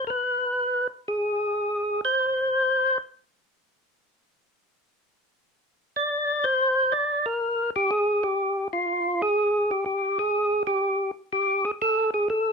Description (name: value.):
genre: jazz.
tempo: 123 BPM.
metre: 4/4.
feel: swing 68% on 8ths.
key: unclear.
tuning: A4 = 440 Hz.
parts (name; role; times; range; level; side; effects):
percussive tonewheel organ; solo; 0.0-3.0, 6.0-12.5 s; F4 to D5; -22 LUFS; equal; overdrive, slow rotary speaker.
room: moderate studio ambience, RT60 0.5 s.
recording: none.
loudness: -22 LUFS.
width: side -4 dB against mid.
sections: 0.0-12.5 A section.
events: none.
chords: none.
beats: | 0.09 0.58 1.07 1.55 | 2.04 2.53 3.02 3.50 | 3.99 4.48 4.97 5.45 | 5.94 6.43 6.91 7.40 | 7.89 8.37 8.86 9.35 | 9.83 10.32 10.80 11.29 | 11.78 12.26.